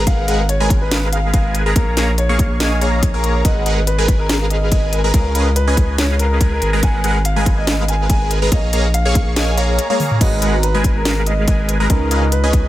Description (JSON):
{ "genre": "future bass", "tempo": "142 BPM", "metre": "4/4", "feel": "swing 53% on 16ths, half-time", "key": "G# dorian", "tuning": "A4 = 440 Hz", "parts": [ { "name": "warm concert grand piano", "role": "melody", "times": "0.0-12.7 s", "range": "A#4 to G#5", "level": "-23 LUFS", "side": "left 1 dB", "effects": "sidechain pumping, digital delay" }, { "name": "supersaw stab", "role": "riff", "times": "0.0-12.7 s", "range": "G#3 to C#6", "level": "-20 LUFS", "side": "equal", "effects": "phaser, sidechain pumping" }, { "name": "saturated sub bass", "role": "bass", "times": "0.0-12.7 s", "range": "G#1 to C#2", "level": "-18 LUFS", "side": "equal", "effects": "tube saturation, sidechain pumping" }, { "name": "electronic kick drum", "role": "drums", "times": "0.1-12.6 s", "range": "none", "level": "-15 LUFS", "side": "equal", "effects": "small room ambience" }, { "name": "trap drum kit", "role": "drums", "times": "0.1-12.6 s", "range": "crash cymbal, hi-hat, snare drum, toms", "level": "-22 LUFS", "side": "equal", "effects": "small room ambience" }, { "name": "soft round pluck", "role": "accompaniment", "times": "10.2-12.7 s", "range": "C#3 to A#5", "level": "-25 LUFS", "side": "right 4 dB", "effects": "analog chorus, sidechain pumping" } ], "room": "digital ambience", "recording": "none", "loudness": "-14 LUFS", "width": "side -14 dB against mid", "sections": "0.0-12.7 A section", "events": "drum fill 9.9-10.2", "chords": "0.0 G#m7; 1.8 A#m7; 3.4 G#m7; 5.1 C#7; 6.6 G#m7; 8.5 A#m7; 10.2 G#m7; 11.9 C#7" }